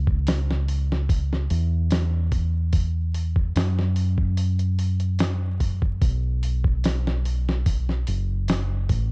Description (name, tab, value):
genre	trip hop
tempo	73 BPM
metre	4/4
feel	straight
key	C# minor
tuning	A4 = 440 Hz
part	deep dub fingered electric bass	bass	0.0-9.1 s	F#1 to F#2	-22 LUFS	equal	none
part	dusty soul sampler-style drum kit	drums	0.1-9.1 s	hi-hat, kick drum, snare drum	-24 LUFS	equal	studio reverb
room	little or no reverb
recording	worn, warbling old tape, cassette tape, vinyl crackle, warbly pitch drift, nothing above 10.3 kHz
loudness	-21 LUFS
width	side -36 dB against mid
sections	0.0-9.1 A section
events	none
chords	none